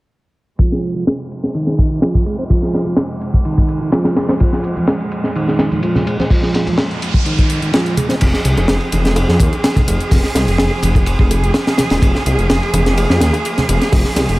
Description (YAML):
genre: breakbeat, breaks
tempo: 126 BPM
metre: 4/4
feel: straight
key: F minor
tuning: A4 = 440 Hz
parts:
  - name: rich symphonic string section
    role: sustained chords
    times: 0.6-14.4 s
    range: F2 to Ab4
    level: -22 LUFS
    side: right 1 dB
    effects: vintage 12-bit sampler grit, sidechain pumping, low-pass filter
  - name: mellow tonewheel organ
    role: riff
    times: 0.6-8.2 s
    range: Eb3 to C4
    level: -20 LUFS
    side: right 1 dB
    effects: slow rotary speaker, tube saturation, vintage 12-bit sampler grit, low-pass filter, tape echo
  - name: crunchy breakbeat drum kit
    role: drums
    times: 0.6-14.4 s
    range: crash cymbal, hi-hat, kick drum, ride cymbal, snare drum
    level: -16 LUFS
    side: equal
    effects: low-pass filter on kick, low-pass filter on cymbals, low-pass filter on hats, low-pass filter on snare, low-pass filter on room
  - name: electronic hi-hat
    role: drums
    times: 0.6-14.4 s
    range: none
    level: -29 LUFS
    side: left 2 dB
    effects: none
  - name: congas and bongos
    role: percussion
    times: 4.8-14.4 s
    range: none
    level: -23 LUFS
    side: right 2 dB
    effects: none
  - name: noise sweep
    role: sound effects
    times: 6.7-8.2 s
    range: none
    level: -27 LUFS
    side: right 3 dB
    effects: none
  - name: detuned saw bass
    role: bass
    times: 8.2-14.4 s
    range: Eb1 to F2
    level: -16 LUFS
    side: equal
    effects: none
room: little or no reverb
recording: low-pass filter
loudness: -13 LUFS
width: side -19 dB against mid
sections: 0.6-8.2 A section; 8.2-14.4 B section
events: filter sweep on drum 0.6-8.2; filter sweep on tonewheel organ 0.6-8.2; filter sweep on string section 0.6-8.2; filter sweep 0.6-8.2; noise sweep 6.7-8.2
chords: 0.6 Fm